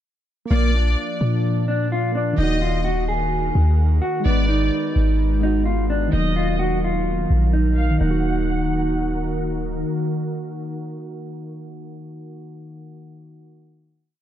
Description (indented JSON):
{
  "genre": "hip hop, trap",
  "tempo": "128 BPM",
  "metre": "4/4",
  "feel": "half-time",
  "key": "Eb harmonic minor",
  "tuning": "A4 = 439 Hz",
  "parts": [
    { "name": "mellow electric guitar", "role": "melody", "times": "0.5-9.4 s", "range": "Bb3 to Ab4", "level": "-24 LUFS", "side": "equal", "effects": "low-pass filter" },
    { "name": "warm symphonic violin section", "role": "second line", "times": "0.5-9.4 s", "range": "D5 to Gb5", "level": "-30 LUFS", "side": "left 1 dB", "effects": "ping-pong delay" },
    { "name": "soft electric-piano-like synth keys", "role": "accompaniment", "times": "0.5-14.2 s", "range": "Eb3 to D5", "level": "-28 LUFS", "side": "right 1 dB", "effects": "chorus, low-pass filter" },
    { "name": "ethereal airy pad", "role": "sustained chords", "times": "1.0-11.8 s", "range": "Eb3 to Bb4", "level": "-29 LUFS", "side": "equal", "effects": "ensemble chorus, built-in reverb" },
    { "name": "warm 808-style bass", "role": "bass", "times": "0.5-9.8 s", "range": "Eb1 to Bb2", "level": "-20 LUFS", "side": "equal", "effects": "none" }
  ],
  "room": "digital ambience",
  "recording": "low-pass filter",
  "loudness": "-18 LUFS",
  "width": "side -11 dB against mid",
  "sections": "0.5-8.0 breakdown; 8.0-11.8 final chord",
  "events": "filter sweep 0.5-8.0",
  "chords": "0.5 Bb; 2.4 Ebm; 4.3 Abm; 6.1 Ebm"
}